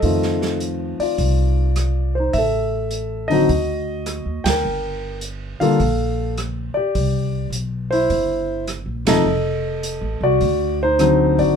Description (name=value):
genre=jazz piano trio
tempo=104 BPM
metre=4/4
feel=swing 68% on 8ths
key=F mixolydian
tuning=A4 = 440 Hz
part: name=warm grand piano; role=melody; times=0.0-11.6 s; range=C3 to G5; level=-19 LUFS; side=left 1 dB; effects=none
part: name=upright bass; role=bass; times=0.0-11.6 s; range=E1 to F2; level=-23 LUFS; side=right 1 dB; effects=none
part: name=vintage drum kit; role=drums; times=0.0-11.5 s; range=hi-hat, kick drum, ride cymbal, rim click, snare drum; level=-28 LUFS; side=right 4 dB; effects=none
room=moderate club reverb, RT60 0.6 s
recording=minimal, uncompressed stereo recording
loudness=-18 LUFS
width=side -7 dB against mid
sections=0.0-11.6 A section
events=band accent 4.4, 9.0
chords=0.0 F7; 2.3 A5; 3.5 D; 4.6 Gm7; 7.0 C; 9.3 F7; 10.4 D7b9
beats=| 0.03 0.60 1.18 1.76 | 2.33 2.91 3.49 4.07 | 4.64 5.22 5.80 6.37 | 6.95 7.53 8.11 8.68 | 9.26 9.84 10.42 11.00